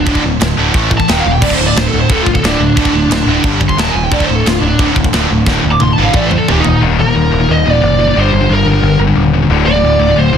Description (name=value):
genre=heavy metal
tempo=178 BPM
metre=4/4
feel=straight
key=unclear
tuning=A4 = 441 Hz
part: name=high-gain lead guitar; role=melody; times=0.0-10.4 s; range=D4 to D6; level=-15 LUFS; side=right 1 dB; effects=distortion
part: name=heavy high-gain guitar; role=riff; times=0.0-10.4 s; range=D2 to A3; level=-16 LUFS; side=left 9 dB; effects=distortion
part: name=high-gain distorted guitar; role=riff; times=0.0-6.8 s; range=D2 to A3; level=-18 LUFS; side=right 9 dB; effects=distortion
part: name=growling picked electric bass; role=bass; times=0.1-10.4 s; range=D1 to A1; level=-16 LUFS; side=equal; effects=overdrive
part: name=tight metal drum kit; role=drums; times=0.1-6.7 s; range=china cymbal, crash cymbal, kick drum, snare drum, toms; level=-16 LUFS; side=right 1 dB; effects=none
part: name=fuzz guitar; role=riff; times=1.4-10.4 s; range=D2 to A3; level=-18 LUFS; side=right 1 dB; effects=distortion
room=studio reverb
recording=dense, heavily limited modern master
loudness=-9 LUFS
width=side -8 dB against mid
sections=0.0-6.8 A section; 6.8-10.4 B section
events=lead electric guitar solo 0.0-6.8; drum fill 5.5-6.8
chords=0.0 D5; 0.8 A5; 1.1 Eb5; 1.4 D5; 3.5 G5; 3.8 Eb5; 4.1 D5; 6.1 A5; 6.5 Eb5; 8.2 Gm; 9.5 D5